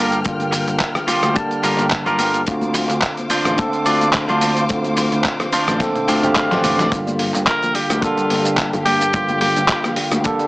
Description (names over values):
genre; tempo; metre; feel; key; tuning
nu-disco, nu disco; 108 BPM; 4/4; swing 55% on 16ths; G minor; A4 = 442 Hz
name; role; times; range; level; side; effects
bell-like tine electric piano; accompaniment; 0.0-10.5 s; D3 to A5; -22 LUFS; equal; medium stereo tremolo, sidechain pumping, dub echo
dark symphonic string section; sustained chords; 0.0-10.5 s; Bb3 to F6; -26 LUFS; left 1 dB; sidechain pumping
electric guitar at the edge of break-up; riff; 0.0-6.9 s; D4 to G5; -20 LUFS; equal; lush chorus, dub echo
overdriven picked electric bass; bass; 0.0-10.2 s; G1 to D2; -24 LUFS; equal; sidechain pumping
dusty soul sampler-style drum kit; drums; 0.1-10.5 s; handclaps, hi-hat, rim click, shaker, snare drum, toms; -21 LUFS; equal; overdrive
cabasa and congas; percussion; 0.1-10.5 s; none; -31 LUFS; left 1 dB; none
kick drum; drums; 0.3-10.4 s; none; -23 LUFS; equal; none
wide unison pluck; arpeggios; 6.9-10.5 s; F3 to F4; -30 LUFS; left 1 dB; none
bright tenor saxophone; melody; 7.5-9.9 s; F4 to Bb4; -20 LUFS; equal; digital delay
room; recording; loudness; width
light reverb; small speaker sound; -15 LUFS; side -22 dB against mid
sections
0.0-6.9 A section; 6.9-10.5 B section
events
drum fill 5.8-6.9; clean electric guitar fill 5.8-6.9; drop 6.9-10.5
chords
0.0 Gm7; 2.5 Dm7; 6.9 Gm7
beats
| 0.25 0.80 1.36 1.92 | 2.47 3.03 3.58 4.14 | 4.69 5.25 5.80 6.36 | 6.92 7.47 8.03 8.58 | 9.14 9.69 10.25